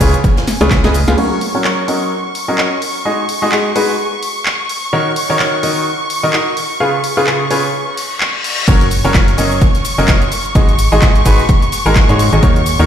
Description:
piano house; 128 BPM; 4/4; swing 57% on 16ths; F# major; A4 = 439 Hz
warm symphonic violin section; sustained chords; 0.0-12.9 s; G#5 to C#6; -21 LUFS; equal; sidechain pumping
bright upright piano; riff; 0.0-12.9 s; C#3 to E#5; -16 LUFS; equal; sidechain pumping, low-pass filter, digital delay
organ-like FM bass; bass; 0.0-1.2, 8.7-12.9 s; F#1 to G#2; -15 LUFS; equal; sidechain pumping
electronic kick drum; drums; 0.0-0.8, 8.7-12.5 s; -13 LUFS; equal
house drum kit; drums; 0.0-12.9 s; crash cymbal, handclaps, hi-hat, shaker, snare drum; -20 LUFS; equal
swinging big-band drum kit; drums; 0.0-1.1, 8.7-12.8 s; ride cymbal, snare drum; -28 LUFS; right 1 dB; high-pass filter on cymbals, high-pass filter on snare, high-pass filter on room
reverse cymbal and impact; sound effects; 8.0-10.6 s; -22 LUFS; left 2 dB
light reverb; played on a big sound system in a bare room, stone room reverb; -11 LUFS; side -9 dB against mid
0.0-1.2 A section; 1.2-8.7 B section; 8.7-12.9 C section
drum fill 0.5-1.2; band accent 1.1; filter sweep on upright piano 1.2-8.7; reverse cymbal 8.0-8.7; drop 8.7-12.9; impact 8.7-10.6
0.0 C#7; 1.2 F#; 2.8 G#7(no3); 4.9 D#m7; 6.6 C#7; 8.7 F#; 10.3 G#7(no3)

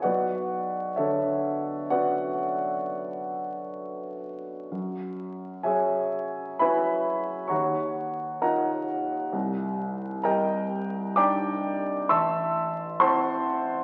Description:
classical, impressionist solo piano; 65 BPM; 5/4; rubato; A4 = 440 Hz
warm grand piano; solo; 0.0-13.8 s; A1 to E6; -28 LUFS; equal
wet scoring stage reverb, RT60 1.6 s; very old 78 rpm record, vinyl crackle; -27 LUFS; mono
0.0-13.8 A section
0.0 Bm9; 4.7 F#sus2; 7.5 D#m9; 9.3 Cm9; 12.1 Am

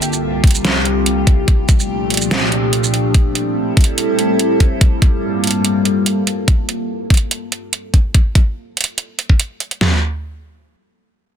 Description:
heavy wobble dubstep; 144 BPM; 4/4; half-time; A4 = 442 Hz
evolving wavetable pad; sustained chords; 0.0-6.5 s; C2 to A4; -17 LUFS; equal; chorus, built-in reverb, phaser, vintage 12-bit sampler grit, sidechain pumping
dubstep drum kit; drums; 0.0-9.8 s; hi-hat, shaker, snare drum; -18 LUFS; right 3 dB
dubstep drum kit; drums; 0.4-9.9 s; kick drum, snare drum, toms; -12 LUFS; equal
light reverb, digital ambience; dense, heavily limited modern master; -13 LUFS; side -9 dB against mid
0.0-9.8 A section; 9.8-11.4 B section
0.0 Csus4; 1.5 Gm7/Bb; 3.1 Am7; 4.8 Gm7; 6.5 N.C.

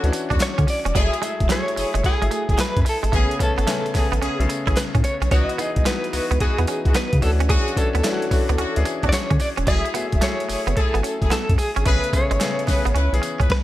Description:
R&B, new jack swing; 110 BPM; 4/4; swing 66% on 16ths; A4 = 441 Hz
direct-recorded clean electric guitar; melody; 0.0-13.6 s; G#4 to E5; -26 LUFS; equal; tremolo
bright concert grand piano; accompaniment; 0.0-13.5 s; C#3 to G#5; -27 LUFS; left 3 dB
warm horn section; stabs; 0.0-13.5 s; A3 to B4; -30 LUFS; left 1 dB
round analog bass; bass; 0.0-13.5 s; E1 to D3; -21 LUFS; equal
boom bap sampler-style drum kit; drums; 0.0-13.6 s; handclaps, hi-hat, kick drum, snare drum, tambourine; -22 LUFS; equal
direct-recorded clean electric guitar; riff; 0.1-13.5 s; F#3 to E4; -29 LUFS; right 6 dB; wide subtle chorus
group handclap; percussion; 0.4-12.8 s; barely audible
digital ambience; -18 LUFS; side -14 dB against mid
0.0-13.6 A section
0.0 Dmaj9; 0.9 F#m9; 3.1 Amaj9; 5.3 C#m11; 7.2 Dmaj9; 9.7 F#m9; 11.9 Amaj9; 12.9 C#m7

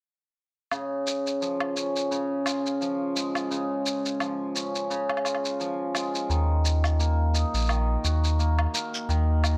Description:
folktronica; 86 BPM; 4/4; swing 56% on 16ths; Db major; A4 = 440 Hz
cimbalom; arpeggios; 0.7-9.6 s; Db3 to Gb4; -30 LUFS; equal; low-pass filter, delay
woodblock and shaker; drums; 0.7-9.6 s; -33 LUFS; equal; studio ambience
warm sub bass; bass; 6.3-9.6 s; Bb1 to Eb2; -25 LUFS; equal
small room ambience; -27 LUFS; mono
0.7-9.6 A section
filter sweep on hammered dulcimer 0.7-9.6
0.7 Db; 6.3 Ebm

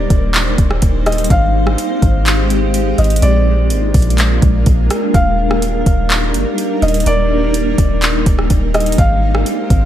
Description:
hip hop, atmospheric cloud-rap; 125 BPM; 4/4; half-time; Eb major; A4 = 439 Hz
felt-muted upright piano; melody; 0.0-9.9 s; D5 to F5; -21 LUFS; equal; digital delay
granular cloud pad; sustained chords; 0.0-9.9 s; G3 to C5; -18 LUFS; equal; built-in reverb, sidechain pumping
soft 808-style bass; bass; 0.0-9.9 s; Eb1 to Bb1; -15 LUFS; equal
smooth R&B drum kit; drums; 0.1-9.8 s; handclaps, hi-hat, kick drum, rim click; -16 LUFS; equal
little or no reverb; -11 LUFS; side -11 dB against mid
0.0-9.9 A section
0.0 Ebmaj7; 1.3 Abmaj7; 3.2 Bb7; 5.1 Ebmaj7; 9.0 Abmaj7

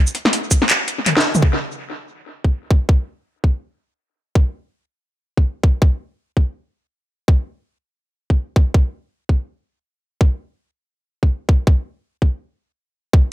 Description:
drum and bass; 164 BPM; 4/4; swing 58% on 16ths, half-time
drum and bass drum kit; drums; 0.1-1.4 s; handclaps, hi-hat, shaker, snare drum, toms; -16 LUFS; equal; low-pass filter on perc, low-pass filter on snare, low-pass filter on hats, low-pass filter on toms, low-pass filter on room, tape echo
electronic kick drum; drums; 0.5-13.2 s; -14 LUFS; equal
little or no reverb; echo-heavy mix; -16 LUFS; side -15 dB against mid
0.0-1.4 A section; 1.4-13.1 B section
drop 0.0-1.4; drum fill 1.1-1.4; stop 12.4-13.1

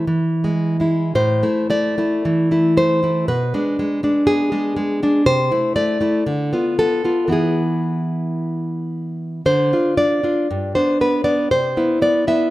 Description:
romantic piece for solo classical guitar; 55-61 BPM; 2/4; rubato; A minor; A4 = 438 Hz
nylon-string guitar; solo; 0.0-12.5 s; G2 to E5; -16 LUFS; equal
moderate recital hall reverb, RT60 1.5 s; -16 LUFS; side -17 dB against mid
0.0-1.2 A section; 1.2-12.5 B section
0.1 E; 1.2 A5; 3.3 G#dim/B; 5.3 Am/C; 6.3 Bdim/D; 7.3 E; 9.5 Dm7; 10.5 G; 11.5 Cmaj7

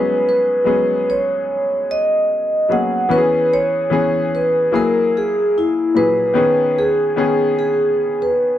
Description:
soul; 74 BPM; 4/4; swing 54% on 16ths; G# minor; A4 = 440 Hz
vibraphone with soft mallets; melody; 0.0-8.6 s; E4 to F#5; -16 LUFS; right 1 dB
clear grand piano; accompaniment; 0.0-8.6 s; A#2 to G#4; -21 LUFS; left 4 dB
light reverb; dry, close 1970s-style studio recording; -14 LUFS; side -11 dB against mid
0.0-8.6 A section
vibraphone solo 0.0-8.6
0.0 G#m11; 3.1 C#m7; 4.7 F#9; 6.4 B69

